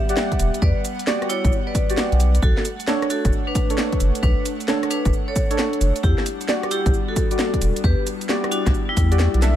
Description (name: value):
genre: UK garage, two-step garage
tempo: 133 BPM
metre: 4/4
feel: swing 66% on 16ths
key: unclear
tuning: A4 = 441 Hz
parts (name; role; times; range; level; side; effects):
- vibraphone with hard mallets; melody; 0.0-9.6 s; G3 to E5; -27 LUFS; left 2 dB; digital delay
- airy breathy pad; sustained chords; 0.0-9.6 s; G3 to F#5; -31 LUFS; equal; chorus, sidechain pumping
- deep mellow chord stab; stabs; 0.0-9.6 s; G3 to F#5; -26 LUFS; right 1 dB; chorus
- garage drum kit; drums; 0.1-9.5 s; hi-hat, rim click, shaker, snare drum; -26 LUFS; equal; none
- electronic kick drum; drums; 0.3-9.1 s; none; -22 LUFS; equal; none
- saturated sub bass; bass; 0.4-9.6 s; E1 to E2; -17 LUFS; equal; none
room: digital ambience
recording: none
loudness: -18 LUFS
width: side -11 dB against mid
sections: 0.0-9.6 A section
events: kick drops out 9.2-9.6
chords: 0.0 Em7; 2.4 Bm7; 6.0 Em7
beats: 0.17 | 0.62 1.07 1.52 1.98 | 2.43 2.88 3.33 3.78 | 4.23 4.68 5.13 5.58 | 6.04 6.49 6.94 7.39 | 7.84 8.29 8.74 9.19